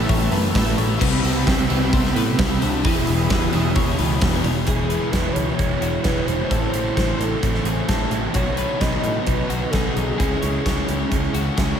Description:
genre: rock, shoegaze and dream pop.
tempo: 130 BPM.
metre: 4/4.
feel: straight.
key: E major.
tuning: A4 = 441 Hz.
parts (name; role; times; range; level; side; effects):
brassy analog pad; sustained chords; 0.0-4.7 s; G#4 to E6; -32 LUFS; right 1 dB; chorus, tremolo.
twelve-string electric guitar; arpeggios; 0.0-11.8 s; F#4 to C#5; -32 LUFS; left 7 dB; wide subtle chorus, diffuse ambient delay.
crunchy overdriven guitar; riff; 0.0-11.8 s; A2 to A4; -26 LUFS; right 8 dB; reverse reverb.
overdriven electric guitar; riff; 0.0-4.7 s; E2 to C4; -28 LUFS; equal; lush chorus.
thick fuzz guitar; riff; 0.0-11.8 s; E2 to C#4; -26 LUFS; left 8 dB; distortion, wide subtle chorus.
modern bright picked electric bass; bass; 0.0-11.7 s; E1 to A2; -25 LUFS; equal; none.
huge arena drum kit; drums; 0.1-11.7 s; crash cymbal, hi-hat, kick drum, snare drum; -23 LUFS; equal; none.
pure sine lead; melody; 1.5-11.3 s; B3 to D#5; -28 LUFS; equal; chorus, diffuse ambient delay.
room: moderate huge ambient reverb, RT60 7.8 s.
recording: dreamy mix soaked in reverb.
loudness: -18 LUFS.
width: side -8 dB against mid.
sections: 0.0-4.7 A section; 4.7-11.8 B section.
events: none.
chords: 0.0 Asus2; 1.0 Cmaj7; 2.8 Emaj7; 4.7 E; 6.5 Am; 8.4 Badd9; 10.2 C#m.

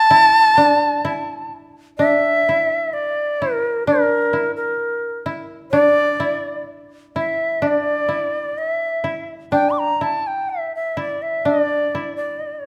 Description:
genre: japanese traditional, Japanese chamber music.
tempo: 63 BPM.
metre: 2/4.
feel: rubato.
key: unclear.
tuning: A4 = 440 Hz.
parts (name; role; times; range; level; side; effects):
bright reedy shakuhachi; melody; 0.0-12.7 s; Bb4 to D6; -20 LUFS; equal; none.
koto; second line; 0.0-12.7 s; D4 to E4; -23 LUFS; equal; none.
room: moderate recital hall reverb, RT60 1.6 s.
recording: none.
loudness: -19 LUFS.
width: mono.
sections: 0.0-2.0 A section; 2.0-12.7 B section.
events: none.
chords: none.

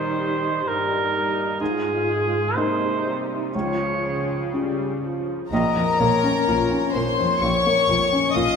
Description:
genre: cinematic, emotional film score for orchestra.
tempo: 63 BPM.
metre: 4/4.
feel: rubato.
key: unclear.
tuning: A4 = 440 Hz.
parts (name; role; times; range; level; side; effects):
warm cor anglais; second line; 0.0-4.5 s; Ab4 to Db5; -25 LUFS; right 2 dB; none.
dark symphonic viola section; accompaniment; 0.0-8.4 s; F3 to F4; -28 LUFS; right 1 dB; none.
felt-muted upright piano; accompaniment; 0.0-8.6 s; Bb1 to F4; -26 LUFS; left 2 dB; none.
warm symphonic cello section; bass; 0.0-8.4 s; G2 to Eb3; -30 LUFS; right 2 dB; none.
warm symphonic violin section; melody; 5.5-8.6 s; Bb5 to Eb6; -23 LUFS; left 5 dB; none.
clear clarinet; second line; 5.5-8.6 s; Db5 to F5; -27 LUFS; left 1 dB; none.
warm symphonic violin section; second line; 5.5-8.6 s; Bb4 to Eb5; -24 LUFS; left 5 dB; none.
warm studio double bass section; bass; 5.5-8.4 s; Bb1; -30 LUFS; right 2 dB; none.
room: wet scoring stage reverb, RT60 1.6 s.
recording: minimal, uncompressed stereo recording.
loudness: -20 LUFS.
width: side -6 dB against mid.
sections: 0.0-5.5 A section; 5.5-8.6 A section.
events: none.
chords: 0.0 Eb; 1.6 Absus2; 3.5 Db; 5.5 Bbm.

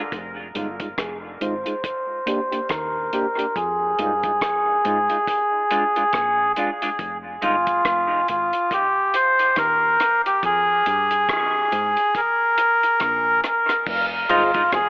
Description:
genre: dub reggae.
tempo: 70 BPM.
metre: 4/4.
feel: swing 58% on 16ths.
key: F dorian.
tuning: A4 = 440 Hz.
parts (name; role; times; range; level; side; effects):
fingered electric bass; bass; 0.1-14.9 s; F1 to Ab2; -36 LUFS; equal; none.
deep reggae drum kit; drums; 0.1-14.9 s; crash cymbal, hi-hat, kick drum, rim click; -28 LUFS; equal; dub echo.
clean electric guitar; accompaniment; 0.5-7.5, 14.3-14.6 s; Ab3 to G4; -29 LUFS; right 1 dB; wide subtle chorus, low-pass filter, dub echo.
melodica; melody; 0.6-14.9 s; F4 to C5; -19 LUFS; equal; low-pass filter, dub echo.
percussive organ stab; stabs; 14.3-14.5 s; F4 to Eb5; -21 LUFS; equal; chorus, dub echo.
bongos; percussion; 14.7-14.9 s; none; -29 LUFS; right 1 dB; none.
room: wet spring reverb, RT60 2.2 s.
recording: telephone sound.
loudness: -18 LUFS.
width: side -26 dB against mid.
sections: 0.1-13.9 A section; 13.9-14.9 B section.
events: filter sweep 0.1-13.9.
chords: 0.1 Fm7; 1.8 Ebmaj7; 3.6 Fm7; 5.3 Bb7; 7.0 Fm; 8.7 Eb6; 10.4 Fm; 12.2 N.C.; 13.9 Fm7.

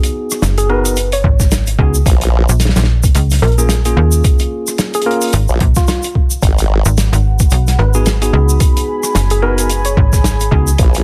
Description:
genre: glitch hop.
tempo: 110 BPM.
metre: 4/4.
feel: swing 58% on 16ths.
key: G# dorian.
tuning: A4 = 442 Hz.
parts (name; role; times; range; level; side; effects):
tine electric piano; stabs; 0.0-10.7 s; A#3 to A#4; -22 LUFS; equal; sidechain pumping, digital delay.
damped 70s drum kit; drums; 0.0-11.0 s; hi-hat, rim click, snare drum; -22 LUFS; equal; small room ambience.
egg shaker; percussion; 0.0-11.0 s; none; -26 LUFS; equal; none.
slap-like FM bass; bass; 0.4-10.8 s; F#1 to D#2; -15 LUFS; equal; tube saturation.
woody wave-folded pluck; melody; 0.6-10.6 s; E#4 to C#5; -23 LUFS; equal; chorus, digital delay.
electronic kick drum; drums; 1.2-10.9 s; none; -15 LUFS; equal; overdrive, small room ambience.
formant-sweep wobble bass; bass; 2.1-6.8, 10.8-11.0 s; G#1 to A#1; -15 LUFS; equal; chorus.
dark analog pad; sustained chords; 6.4-11.0 s; G#4 to B5; -26 LUFS; equal; chorus, sidechain pumping.
room: light reverb, small room reverb.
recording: dense, heavily limited modern master.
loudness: -13 LUFS.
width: mono.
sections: 0.0-11.0 A section.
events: none.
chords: 0.0 G#m7; 2.1 A#m7; 6.4 G#m7.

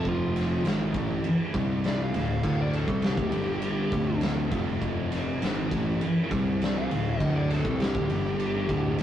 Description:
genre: stoner and doom metal.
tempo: 101 BPM.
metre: 4/4.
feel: straight.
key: D minor.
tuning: A4 = 440 Hz.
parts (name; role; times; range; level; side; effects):
fuzz lead guitar; melody; 0.0-9.0 s; F4 to F5; -32 LUFS; equal; distortion.
swarming drone; sustained chords; 1.4-9.0 s; D3 to A3; -42 LUFS; left 1 dB; none.
thick fuzz guitar; riff; 0.0-9.0 s; D2 to C4; -30 LUFS; left 4 dB; distortion.
thick fuzz guitar; riff; 0.0-9.0 s; D2 to C4; -31 LUFS; right 4 dB; distortion.
fuzz picked electric bass; bass; 0.0-9.0 s; D1 to C2; -32 LUFS; equal; overdrive.
oversized low-tuned drum kit; drums; 0.1-9.0 s; crash cymbal, kick drum, ride cymbal, snare drum; -31 LUFS; equal; none.
room: moderate studio reverb, RT60 0.6 s.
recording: rough rehearsal-room recording, tube saturation, cassette tape.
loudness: -24 LUFS.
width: side -11 dB against mid.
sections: 0.0-9.0 A section.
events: lead electric guitar solo 0.0-9.0.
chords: 0.0 F5; 0.6 D5; 1.5 C5; 2.1 D5; 3.3 G5; 3.9 D5; 4.5 F5; 5.4 D5; 6.3 C5; 6.9 D5; 8.1 G5.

